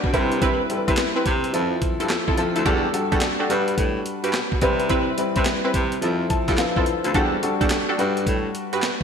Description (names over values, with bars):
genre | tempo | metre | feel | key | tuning
R&B, new jack swing | 107 BPM | 4/4 | swing 64% on 16ths | unclear | A4 = 440 Hz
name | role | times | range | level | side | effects
warm grand piano | accompaniment | 0.0-9.0 s | F3 to A5 | -24 LUFS | left 2 dB | wide subtle chorus
warm baritone saxophone | bass | 0.0-9.0 s | D2 to C3 | -26 LUFS | right 1 dB | none
breakbeat sampler-style drum kit | drums | 0.0-9.0 s | handclaps, hi-hat, kick drum, snare drum | -24 LUFS | right 1 dB | gated reverb
funky polysynth comp | stabs | 0.1-8.9 s | C4 to B4 | -25 LUFS | right 1 dB | chorus
room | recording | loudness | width
moderate lush hall reverb, RT60 1.8 s, small room ambience | bright 1980s-style digital production | -19 LUFS | side -6 dB against mid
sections
0.0-9.0 A section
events
grand piano fill 6.0-7.1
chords
0.1 Cmaj7; 1.5 Fmaj7; 2.7 Em11; 3.5 Gmaj7; 4.6 Cmaj7; 6.0 Fmaj7; 7.1 Em11; 8.0 Gmaj7